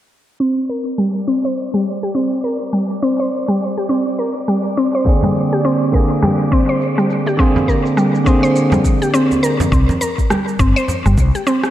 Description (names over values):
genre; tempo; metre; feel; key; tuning
organic downtempo; 103 BPM; 4/4; swing 59% on 16ths; unclear; A4 = 440 Hz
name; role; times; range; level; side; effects
mallet-like synth pluck; arpeggios; 0.4-11.7 s; G3 to C5; -16 LUFS; equal; chorus, tape echo
electronic cabasa, rim click and claves; drums; 0.4-11.7 s; none; -25 LUFS; equal; none
wind-like tuned noise texture; texture; 1.3-9.7 s; D5; -29 LUFS; right 2 dB; built-in reverb
bell-like tine electric piano; accompaniment; 5.0-9.7 s; D3 to Ab4; -18 LUFS; right 2 dB; phaser, sidechain pumping, tape echo
electronic kick drum; drums; 5.1-11.3 s; none; -16 LUFS; equal; none
congas and bongos; percussion; 5.1-11.6 s; none; -23 LUFS; right 2 dB; none
mellow fretless electric bass; bass; 9.7-11.3 s; G1 to C2; -14 LUFS; equal; sidechain pumping
room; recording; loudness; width
wet lush hall reverb, RT60 2.1 s; dark, warm production, low-pass filter; -14 LUFS; side -12 dB against mid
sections
0.4-9.7 A section; 9.7-11.7 B section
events
filter sweep on synth pluck 0.4-9.7; filter sweep 0.4-9.7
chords
0.4 C5; 5.1 Bb9; 9.7 C5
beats
| 0.40 0.98 1.57 2.15 | 2.73 3.31 3.90 4.48 | 5.06 5.64 6.23 6.81 | 7.39 7.97 8.56 9.14 | 9.72 10.30 10.89 11.47